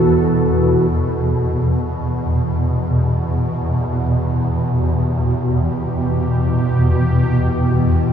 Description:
dark ambient drone; free time; E minor; A4 = 440 Hz
sweeping resonant pad; sustained chords; 0.0-8.1 s; E3 to A4; -21 LUFS; right 1 dB; chorus
swarming drone; drone; 0.0-8.1 s; E2 to B2; -16 LUFS; equal; built-in reverb
flickering grainy texture; texture; 0.0-0.9 s; B4; -34 LUFS; left 5 dB
wet cathedral reverb, RT60 6.5 s; in a vast, echoing space; -15 LUFS; side -8 dB against mid
0.9-8.1 A section
fade-in on analog synth pad 0.9-8.1
0.0 E5; 0.9 Em

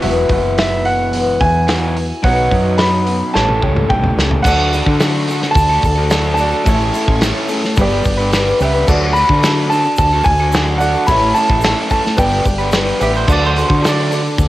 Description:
folk rock and heartland rock; 109 BPM; 4/4; straight; A lydian; A4 = 439 Hz
picked steel-string acoustic guitar; accompaniment; 0.0-14.5 s; G2 to A4; -22 LUFS; left 4 dB; cassette tape
warm baby grand piano; accompaniment; 0.0-14.2 s; D#4 to E5; -24 LUFS; right 4 dB; cassette tape
crunchy overdriven guitar; riff; 0.0-14.5 s; E2 to B4; -21 LUFS; equal; cassette tape
woody fretless electric bass; bass; 0.0-14.5 s; E1 to D3; -18 LUFS; equal
loose indie drum kit; drums; 0.0-14.5 s; crash cymbal, hi-hat, kick drum, snare drum, toms; -18 LUFS; equal; cassette tape
warm concert grand piano; melody; 0.6-13.0 s; E5 to B5; -17 LUFS; right 1 dB; cassette tape, analog delay
tonewheel organ; sustained chords; 4.5-14.5 s; C#4 to D5; -30 LUFS; equal
tube shaker; percussion; 4.5-14.5 s; -38 LUFS; left 7 dB
mandolin; second line; 13.0-14.1 s; G4 to D5; -20 LUFS; right 4 dB; cassette tape
moderate spring reverb, RT60 1.6 s, studio ambience; home recording on cassette; -12 LUFS; side -16 dB against mid
0.0-4.5 A section; 4.5-14.5 B section
drum fill 3.4-4.5
0.0 Esus2; 2.2 Badd9; 3.4 A7; 4.5 D; 6.7 A; 7.8 G; 8.9 D; 11.1 A; 12.2 G; 13.3 D

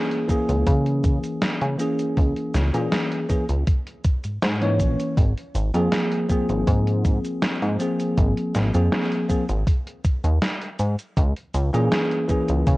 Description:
vaporwave; 80 BPM; 4/4; straight; Ab major; A4 = 443 Hz
bell-like tine electric piano; accompaniment; 0.0-12.8 s; Fb3 to Db5; -23 LUFS; equal; lush chorus, tape echo
gated 80s digital drum machine; drums; 0.1-12.8 s; cabasa, hi-hat, snare drum; -27 LUFS; equal; gated reverb, gated reverb snare
electronic kick drum; drums; 0.3-12.8 s; -20 LUFS; equal
chorused synth bass; bass; 0.5-12.8 s; Ab1 to Db3; -21 LUFS; equal
little or no reverb; worn, warbling old tape, cassette tape, warbly pitch drift; -20 LUFS; side -20 dB against mid
0.0-12.8 A section
0.0 Dbm6; 5.2 Ab69; 11.2 Dbm6

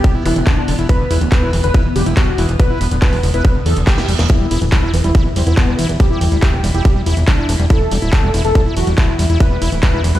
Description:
psychedelic trance; 141 BPM; 4/4; straight; E minor; A4 = 440 Hz
wide unison lead; melody; 0.0-10.2 s; B3 to B4; -22 LUFS; left 1 dB; phaser, sidechain pumping, ping-pong delay
vowel-sweep wobble bass; second line; 0.0-0.4, 4.9-6.8 s; E3 to E4; -32 LUFS; equal
evolving wavetable pad; sustained chords; 0.0-10.2 s; B3 to E4; -26 LUFS; equal; chorus, built-in reverb, phaser, sidechain pumping
overdriven acid bass; riff; 0.0-10.2 s; D3 to E4; -23 LUFS; moving between left 3 dB and right 3 dB; distortion, auto-pan, sidechain pumping, dub echo
electronic kick drum; drums; 0.0-9.9 s; -13 LUFS; equal
techno drum kit; drums; 0.0-10.2 s; handclaps, hi-hat, ride cymbal, snare drum; -24 LUFS; equal
fat analog bass; bass; 0.3-10.2 s; D1 to E2; -16 LUFS; equal
zap and reverse cymbal; sound effects; 0.3-0.4, 3.6-4.3 s; -29 LUFS; right 4 dB
digital ambience; played on a big sound system in a bare room, stone room reverb; -12 LUFS; side -14 dB against mid
0.0-10.2 A section
reverse cymbal 3.6-4.3; drum fill 3.9-4.3
0.0 E5

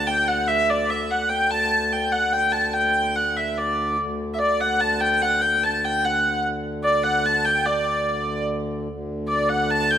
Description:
medieval; 146 BPM; 3/4; straight; D major; A4 = 439 Hz
rich hurdy-gurdy; melody; 0.0-10.0 s; D5 to A5; -20 LUFS; equal
hand-pumped harmonium; drone; 0.0-10.0 s; D2; -28 LUFS; left 1 dB
moderate recital hall reverb, RT60 1.5 s; -20 LUFS; side -9 dB against mid
0.0-8.9 A section; 8.9-10.0 A section

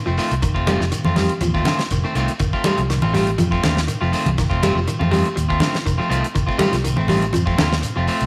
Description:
afrobeat; 122 BPM; 4/4; straight; F mixolydian; A4 = 438 Hz
clean electric guitar; arpeggios; 0.1-8.1 s; D3 to G3; -26 LUFS; equal; ensemble chorus
electric guitar at the edge of break-up; stabs; 0.1-8.2 s; Eb3 to F4; -25 LUFS; equal
fingered electric bass; bass; 0.1-8.3 s; F1 to F2; -24 LUFS; equal
shekere; percussion; 0.1-8.3 s; -33 LUFS; equal
damped 70s drum kit; drums; 0.2-8.3 s; hi-hat, kick drum, snare drum; -29 LUFS; equal
congas; percussion; 0.7-7.7 s; -25 LUFS; equal
moderate echo chamber reverb, RT60 1.4 s, studio reverb; -19 LUFS; mono
0.0-8.3 A section
0.0 F7

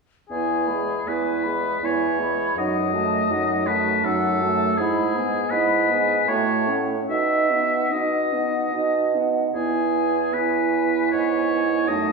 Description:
classical, slow romantic movement for wind quintet; 72-83 BPM; 3/4; rubato; E major; A4 = 440 Hz
concert flute; melody; 0.3-12.1 s; D#5 to B5; -29 LUFS; left 7 dB
clear oboe; second line; 0.3-12.1 s; G#4 to E5; -24 LUFS; left 3 dB
dark clarinet; accompaniment; 0.3-12.1 s; D#4 to A4; -27 LUFS; right 8 dB
mellow French horn; accompaniment; 0.3-12.1 s; F#3 to D#4; -28 LUFS; right 1 dB
warm bassoon; bass; 0.3-12.1 s; E2 to B2; -25 LUFS; right 4 dB
wet recital hall reverb, RT60 1.4 s; heard from further back in the room, small room reverb; -19 LUFS; side -3 dB against mid
0.3-12.1 A section
0.3 E; 2.6 D#dim/F#; 4.8 E/G#; 6.3 F#m/A; 7.1 B; 9.5 E

